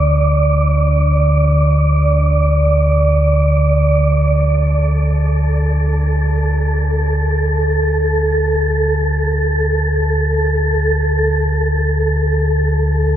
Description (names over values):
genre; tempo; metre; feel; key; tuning
ambient; free time; none; none; unclear; A4 = 437 Hz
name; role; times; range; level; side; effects
deep rumbling drone; drone; 0.0-13.2 s; D2 to D3; -14 LUFS; equal; built-in reverb, wide subtle chorus
wind-like tuned noise texture; texture; 0.0-13.2 s; A4 to D5; -18 LUFS; right 1 dB; built-in reverb
room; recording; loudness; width
wet huge ambient reverb, RT60 7.7 s; none; -13 LUFS; side -11 dB against mid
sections
0.0-13.2 A section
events
filter sweep on synth drone 0.0-13.2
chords
0.0 D5